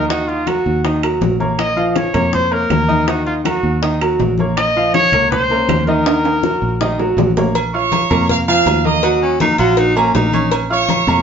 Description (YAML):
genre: latin, salsa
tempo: 161 BPM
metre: 4/4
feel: straight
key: Bb minor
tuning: A4 = 435 Hz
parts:
  - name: warm trumpet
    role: melody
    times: 0.0-7.1 s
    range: F4 to Eb5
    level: -18 LUFS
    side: left 1 dB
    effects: plate reverb
  - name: clear baby grand piano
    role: accompaniment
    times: 0.0-11.2 s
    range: Eb3 to F6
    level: -18 LUFS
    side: right 1 dB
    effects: none
  - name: fingered electric bass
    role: bass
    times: 0.0-11.2 s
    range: Bb1 to F2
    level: -20 LUFS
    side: right 1 dB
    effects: none
  - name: bongos and cowbell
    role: percussion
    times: 0.1-11.1 s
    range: none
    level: -24 LUFS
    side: left 5 dB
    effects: none
  - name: congas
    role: percussion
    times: 0.1-11.2 s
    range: none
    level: -23 LUFS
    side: left 3 dB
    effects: none
  - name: timbales and agogo bells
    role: percussion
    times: 0.1-11.2 s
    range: none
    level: -23 LUFS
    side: right 4 dB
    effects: none
  - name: bright trumpet section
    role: melody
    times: 7.7-11.2 s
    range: Db5 to Eb6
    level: -16 LUFS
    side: right 4 dB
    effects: plate reverb
  - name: warm baritone saxophone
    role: second line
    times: 9.2-10.6 s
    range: Db4 to F4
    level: -18 LUFS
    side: left 2 dB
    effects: none
room: wet studio reverb, RT60 0.7 s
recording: heard from further back in the room, nothing above 7.5 kHz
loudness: -13 LUFS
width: side -7 dB against mid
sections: 0.0-7.5 A section; 7.5-11.2 B section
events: drum fill 6.1-7.5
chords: 0.1 Ebm; 1.6 Bbm; 3.1 Ebm; 4.6 Bbm; 6.1 Ebm; 7.5 Bbm; 9.0 Ebm; 10.5 Bbm